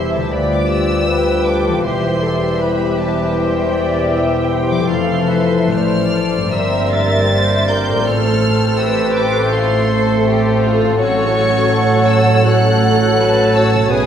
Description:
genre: classical, slow romantic movement for symphony orchestra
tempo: 70-83 BPM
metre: 4/4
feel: rubato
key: C major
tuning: A4 = 439 Hz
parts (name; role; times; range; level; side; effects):
- dark studio violin section; melody; 0.0-14.1 s; G5 to A6; -24 LUFS; equal; none
- clear clarinet; second line; 0.0-14.1 s; G4 to Bb4; -24 LUFS; equal; none
- concert flute; second line; 0.0-14.1 s; B4 to C#5; -24 LUFS; left 2 dB; none
- dark studio violin section; second line; 0.0-14.1 s; E4 to A5; -22 LUFS; left 1 dB; none
- dark studio viola section; accompaniment; 0.0-14.1 s; A4 to E5; -22 LUFS; equal; none
- mellow bassoon; accompaniment; 0.0-14.1 s; E3 to A3; -22 LUFS; equal; none
- clear French horn section; sustained chords; 0.0-14.1 s; F#3 to F4; -22 LUFS; left 4 dB; none
- concert harp; arpeggios; 0.0-14.1 s; G2 to C5; -24 LUFS; left 6 dB; none
- warm studio double bass section; bass; 0.0-14.1 s; E1 to D2; -22 LUFS; right 2 dB; none
- warm symphonic cello section; bass; 0.0-14.1 s; D2 to B2; -21 LUFS; right 4 dB; none
room: wet scoring stage reverb, RT60 1.8 s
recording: none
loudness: -13 LUFS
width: side -8 dB against mid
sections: 0.0-14.1 A section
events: none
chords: 0.3 G7/D; 1.9 C/E; 4.9 Fmaj7; 6.5 C7/G; 8.1 F/A; 11.0 F#m/A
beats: 0.32 1.09 | 1.86 2.62 3.38 4.14 | 4.90 5.72 6.54 7.32 | 8.06 8.80 9.53 10.26 | 10.99 11.73 12.47 13.19 | 13.92

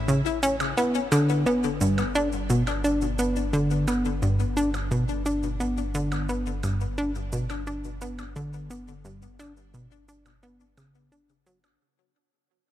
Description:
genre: ambient, sequencer-driven space music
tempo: 87 BPM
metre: 4/4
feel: straight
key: G lydian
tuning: A4 = 440 Hz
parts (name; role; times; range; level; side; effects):
- warm sub bass; bass; 0.0-11.8 s; G1 to A1; -34 LUFS; equal; none
- plucky analog bass; riff; 0.1-11.6 s; G2 to D4; -24 LUFS; equal; ping-pong delay
- shaker and percussion blips; percussion; 0.1-11.8 s; none; -36 LUFS; right 2 dB; ping-pong delay
room: light reverb, digital ambience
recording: cassette tape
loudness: -23 LUFS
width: side -12 dB against mid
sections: 0.0-11.8 A section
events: fade-out 0.8-11.8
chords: 0.0 A; 0.8 G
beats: 0.09 | 0.77 1.46 2.15 2.84 | 3.53 4.22 4.91 5.60 | 6.29 6.98 7.67 8.36 | 9.05 9.74 10.43 11.12

